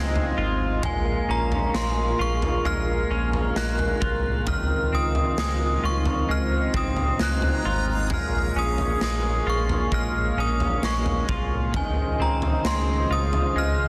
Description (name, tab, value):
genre	dream pop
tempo	66 BPM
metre	4/4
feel	straight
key	Db major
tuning	A4 = 441 Hz
part	synth chime	melody	0.0-13.9 s	Ab5 to Ab6	-31 LUFS	equal	ensemble chorus, tape echo
part	warm analog pad	sustained chords	0.0-13.9 s	Db3 to Eb5	-32 LUFS	equal	chorus
part	clean electric guitar	arpeggios	0.0-13.9 s	Eb3 to F4	-33 LUFS	equal	lush chorus, tape echo
part	round analog bass	bass	0.0-13.9 s	Ab1 to Db2	-28 LUFS	equal	none
part	raw garage drum kit	drums	0.2-13.5 s	kick drum, snare drum, toms	-31 LUFS	equal	none
part	backwards swelling texture	texture	1.9-13.9 s	F5 to Ab6	-43 LUFS	equal	none
room	light reverb, small room ambience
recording	dense, heavily limited modern master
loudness	-24 LUFS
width	mono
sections	0.0-13.9 A section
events	none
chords	0.0 Dbmaj9; 0.8 Bbm7; 4.5 Dbmaj9; 8.1 Bbm7; 11.7 Dbmaj9